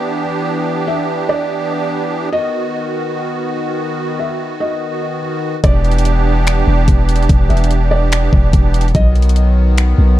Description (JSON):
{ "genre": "hip hop, atmospheric cloud-rap", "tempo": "145 BPM", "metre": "4/4", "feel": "half-time", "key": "E minor", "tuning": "A4 = 440 Hz", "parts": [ { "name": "felt-muted upright piano", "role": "melody", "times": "0.0-10.1 s", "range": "D5 to E5", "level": "-23 LUFS", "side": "equal", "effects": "low-pass filter, digital delay" }, { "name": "musette accordion", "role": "sustained chords", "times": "0.0-10.2 s", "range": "D#3 to G4", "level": "-19 LUFS", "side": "right 1 dB", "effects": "sidechain pumping" }, { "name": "long sustained 808-style bass", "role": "bass", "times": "5.6-10.2 s", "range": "E1 to B1", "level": "-12 LUFS", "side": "equal", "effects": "none" }, { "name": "smooth R&B drum kit", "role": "drums", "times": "5.6-9.9 s", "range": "finger snaps, hi-hat, kick drum", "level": "-14 LUFS", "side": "equal", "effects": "none" } ], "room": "small room ambience", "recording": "dark, warm production", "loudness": "-13 LUFS", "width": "side -14 dB against mid", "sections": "0.0-10.2 A section", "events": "none", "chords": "0.0 Em7; 2.3 B; 5.6 Em7; 8.9 B", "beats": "0.26 | 0.67 1.09 1.50 1.91 | 2.33 2.74 3.15 3.57 | 3.98 4.40 4.81 5.22 | 5.64 6.05 6.46 6.88 | 7.29 7.71 8.12 8.53 | 8.95 9.36 9.78 10.19" }